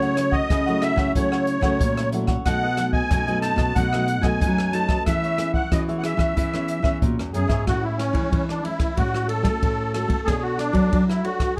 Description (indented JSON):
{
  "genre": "samba and choro",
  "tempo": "92 BPM",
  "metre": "4/4",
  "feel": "straight",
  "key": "E major, A major from 7.7 s",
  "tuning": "A4 = 441 Hz",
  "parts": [
    { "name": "musette accordion", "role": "melody", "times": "0.0-11.6 s", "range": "C#4 to A5", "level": "-27 LUFS", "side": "equal", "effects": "plate reverb" },
    { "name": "cavaquinho", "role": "accompaniment", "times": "0.0-7.7 s", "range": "D#4 to F#5", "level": "-34 LUFS", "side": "equal", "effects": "none" },
    { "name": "nylon-string guitar", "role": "accompaniment", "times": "0.0-11.6 s", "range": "F#2 to C#5", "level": "-32 LUFS", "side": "equal", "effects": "none" },
    { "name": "nylon-string guitar", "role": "bass", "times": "0.0-11.2 s", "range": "E2 to A3", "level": "-27 LUFS", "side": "equal", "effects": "none" },
    { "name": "open jazz drum kit", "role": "drums", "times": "0.0-11.6 s", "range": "hi-hat, kick drum, ride cymbal, rim click", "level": "-27 LUFS", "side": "equal", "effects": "none" }
  ],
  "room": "light reverb",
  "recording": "dark, warm production",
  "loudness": "-22 LUFS",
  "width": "mono",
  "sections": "0.0-7.7 A section; 7.7-11.6 B section",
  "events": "none",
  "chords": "0.0 F#m7/C#; 2.5 B7; 5.1 E6; 7.7 Amaj7; 9.0 A6; 10.3 Bm9"
}